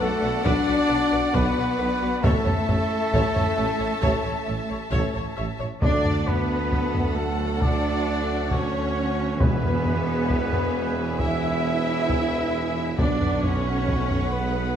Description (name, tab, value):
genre	cinematic, epic orchestral film score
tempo	67 BPM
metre	4/4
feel	straight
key	unclear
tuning	A4 = 441 Hz
part	warm symphonic violin section	melody	0.0-14.8 s	A4 to E5	-33 LUFS	left 5 dB	none
part	rich studio violin section	second line	0.0-14.8 s	G#4 to A5	-34 LUFS	left 2 dB	none
part	warm symphonic viola section	accompaniment	0.0-14.8 s	A3 to E5	-32 LUFS	equal	none
part	mellow French horn section	sustained chords	0.0-14.8 s	F#3 to D4	-31 LUFS	left 4 dB	none
part	mellow woodwind section	sustained chords	0.0-14.8 s	F#3 to G#5	-34 LUFS	equal	none
part	warm trumpet	stabs	0.0-14.8 s	A4 to E5	-31 LUFS	right 1 dB	none
part	rich symphonic cello section	bass	0.0-14.8 s	A3 to E4	-30 LUFS	right 2 dB	none
part	rich symphonic double bass section	bass	0.0-14.8 s	A1 to E2	-30 LUFS	right 3 dB	none
part	warm tuba	bass	0.0-14.8 s	E1 to D2	-31 LUFS	right 3 dB	none
part	solo taiko drums	drums	0.5-14.7 s	none	-26 LUFS	equal	none
part	timpani	percussion	9.4-10.7 s	E2	-30 LUFS	left 1 dB	none
room	moderate scoring stage reverb, RT60 1.8 s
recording	none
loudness	-21 LUFS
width	side -9 dB against mid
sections	0.0-5.8 A section; 5.8-14.8 A section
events	none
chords	0.0 Bm; 2.2 A; 5.8 D; 9.4 E; 13.0 Bm